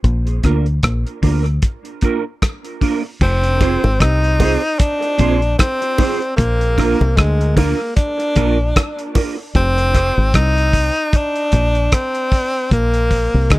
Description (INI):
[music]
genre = dub reggae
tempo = 76 BPM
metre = 4/4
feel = swing 57% on 16ths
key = F dorian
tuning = A4 = 440 Hz
[part]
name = deep dub fingered electric bass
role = bass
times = 0.0-13.6 s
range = F1 to D2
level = -16 LUFS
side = equal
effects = none
[part]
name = cloth-damped thuddy drum kit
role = drums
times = 0.0-13.6 s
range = crash cymbal, hi-hat, kick drum, rim click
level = -16 LUFS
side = equal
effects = none
[part]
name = mellow electric guitar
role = accompaniment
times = 0.4-10.1 s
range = Bb3 to C5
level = -22 LUFS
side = right 5 dB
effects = ensemble chorus, high-pass filter, dub echo
[part]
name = breathy tenor saxophone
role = melody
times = 3.2-13.6 s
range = Ab3 to Eb4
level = -18 LUFS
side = equal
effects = dub echo
[part]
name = bongos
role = percussion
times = 3.6-10.2 s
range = none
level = -25 LUFS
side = right 1 dB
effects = high-pass filter on perc, dub echo
[sound]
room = little or no reverb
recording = dry, close 1970s-style studio recording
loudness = -14 LUFS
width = side -18 dB against mid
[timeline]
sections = 0.0-3.2 A section; 3.2-13.6 B section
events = part muted 9.5-13.6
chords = 0.0 Bb; 3.2 Fm; 6.4 Bb; 9.5 Fm; 12.7 N.C.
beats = | 0.04 0.83 1.62 2.42 | 3.21 4.00 4.79 5.59 | 6.38 7.17 7.96 8.75 | 9.55 10.34 11.13 11.92 | 12.71 13.51